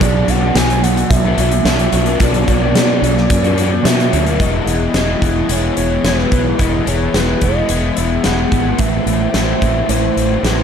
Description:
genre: rock, shoegaze and dream pop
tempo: 109 BPM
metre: 4/4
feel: straight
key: E major from 4.4 s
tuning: A4 = 440 Hz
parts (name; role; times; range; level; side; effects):
- pure breathy sine lead; melody; 0.0-10.6 s; B4 to G#5; -21 LUFS; right 4 dB; chorus, analog delay
- mellow electric guitar; riff; 0.0-4.4, 8.8-10.6 s; A2 to C#5; -22 LUFS; right 12 dB; reverse reverb
- raw garage guitar; riff; 0.0-10.6 s; A2 to E4; -18 LUFS; left 5 dB; overdrive, analog chorus
- mellow fretless electric bass; bass; 0.0-10.6 s; E1 to B2; -18 LUFS; right 1 dB; none
- big rock drum kit; drums; 0.0-10.6 s; hi-hat, kick drum, snare drum; -18 LUFS; equal; none
room: moderate church reverb, RT60 3.5 s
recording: dreamy mix soaked in reverb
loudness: -12 LUFS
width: side -7 dB against mid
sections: 0.0-4.4 A section; 4.4-10.6 B section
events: none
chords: 0.0 Bmadd9; 4.4 Emaj7; 8.8 Amadd9

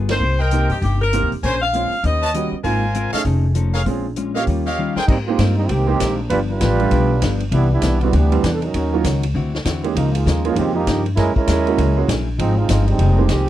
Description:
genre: jazz, big band swing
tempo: 197 BPM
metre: 4/4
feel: swing 62% on 8ths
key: Ab major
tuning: A4 = 440 Hz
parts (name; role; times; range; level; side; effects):
- vintage hollow-body jazz guitar; accompaniment; 0.0-13.5 s; G2 to C5; -26 LUFS; left 5 dB; none
- upright bass; bass; 0.0-13.5 s; F1 to Ab2; -19 LUFS; left 1 dB; none
- warm saxophone section; melody; 0.1-2.5 s; G4 to F5; -21 LUFS; left 1 dB; none
- clear concert grand piano; accompaniment; 0.1-13.3 s; Gb3 to Bb4; -24 LUFS; right 9 dB; none
- vintage drum kit; drums; 0.1-13.4 s; crash cymbal, hi-hat, kick drum, ride cymbal, snare drum; -24 LUFS; left 1 dB; none
- brilliant trumpet section; stabs; 0.4-5.0 s; G4 to A5; -23 LUFS; equal; none
- clear trombone section; second line; 5.1-13.5 s; D3 to B4; -21 LUFS; right 4 dB; none
room: little or no reverb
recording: dry, close 1970s-style studio recording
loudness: -16 LUFS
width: side -13 dB against mid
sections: 0.0-5.1 A section; 5.1-13.5 B section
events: band accent 0.1; drum fill 4.8-5.1; trombone section solo 5.1-13.5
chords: 0.2 Cm7; 1.4 Bbm9; 2.0 Eb7alt; 2.6 Ab69; 3.3 F7alt; 3.9 Bbm7; 4.5 Eb9; 5.1 Abmaj9; 6.3 G7; 7.5 Cmaj9; 8.7 Ebm7; 9.3 D9; 10.0 Db69; 11.2 Gb9; 12.4 Ab6; 13.0 Fm11

